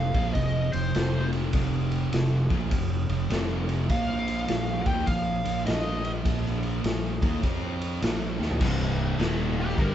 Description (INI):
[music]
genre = stoner and doom metal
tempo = 102 BPM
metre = 4/4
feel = swing 64% on 8ths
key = unclear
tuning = A4 = 440 Hz
[part]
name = fuzz lead guitar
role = melody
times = 0.0-9.9 s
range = G4 to G5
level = -31 LUFS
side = left 1 dB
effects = wah, distortion
[part]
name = thick fuzz guitar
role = riff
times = 0.0-9.9 s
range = C2 to F4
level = -32 LUFS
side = left 6 dB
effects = distortion
[part]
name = thick fuzz guitar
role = riff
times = 0.0-9.9 s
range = C2 to F4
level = -30 LUFS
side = right 6 dB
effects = distortion
[part]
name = fuzz fingered electric bass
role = bass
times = 0.0-9.9 s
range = C1 to F2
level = -31 LUFS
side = equal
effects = overdrive
[part]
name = raw garage drum kit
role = drums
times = 0.1-9.9 s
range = crash cymbal, kick drum, ride cymbal, snare drum, toms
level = -29 LUFS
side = equal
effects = none
[part]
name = distorted electric guitar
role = riff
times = 8.6-9.9 s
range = C2 to G3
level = -33 LUFS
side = left 1 dB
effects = overdrive
[sound]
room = light reverb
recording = band playing live in one room, nothing above 7.9 kHz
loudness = -24 LUFS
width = side -10 dB against mid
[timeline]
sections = 0.0-8.6 A section; 8.6-9.9 B section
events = drum fill 8.3; lead electric guitar solo 8.6-9.9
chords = 0.0 F5; 3.9 Bb5; 7.4 F5; 8.0 Bb5; 8.6 C5; 9.2 Eb5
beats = 0.36 0.95 | 1.54 2.13 2.72 3.31 | 3.90 4.49 5.08 5.67 | 6.25 6.84 7.43 8.02 | 8.61 9.19 9.78